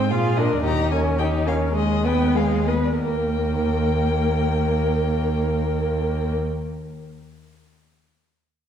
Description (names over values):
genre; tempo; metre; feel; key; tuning
quick classical-period movement for string quartet; 90-113 BPM; 2/4; rubato; Eb major; A4 = 439 Hz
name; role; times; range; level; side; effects
rich violin; melody; 0.0-6.3 s; D5 to Bb5; -31 LUFS; left 8 dB; none
dark violin; second line; 0.0-6.3 s; G4 to C5; -28 LUFS; left 2 dB; none
rich viola; accompaniment; 0.0-6.3 s; Ab3 to F4; -24 LUFS; right 1 dB; none
warm cello; bass; 0.0-6.3 s; Eb2 to Bb2; -23 LUFS; right 1 dB; none
room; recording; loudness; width
wet recital hall reverb, RT60 1.6 s; heard from further back in the room; -19 LUFS; side -8 dB against mid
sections
0.0-3.0 A section; 3.0-5.6 B section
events
slowing down 0.1-3.0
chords
0.1 Bb7; 0.6 Eb7; 1.8 Abm/Eb; 3.0 Eb